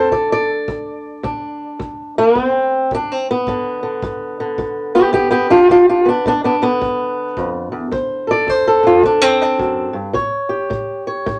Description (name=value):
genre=acoustic country blues, solo or duo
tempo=108 BPM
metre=4/4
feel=swing 63% on 8ths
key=unclear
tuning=A4 = 442 Hz
part: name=fingerpicked swing-style acoustic guitar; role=melody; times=0.0-11.4 s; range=D2 to D5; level=-17 LUFS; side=equal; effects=none
part: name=kick drum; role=drums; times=0.1-11.4 s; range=none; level=-36 LUFS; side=equal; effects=none
room=wet small room ambience, RT60 0.5 s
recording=none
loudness=-16 LUFS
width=mono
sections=0.0-11.4 A section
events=none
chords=0.0 D7(no3); 3.5 G; 7.9 D7(no3); 10.1 A7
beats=0.11 0.67 | 1.23 1.79 2.35 2.90 | 3.46 4.02 4.58 5.13 | 5.69 6.25 6.81 7.36 | 7.92 8.48 9.03 9.59 | 10.14 10.70 11.26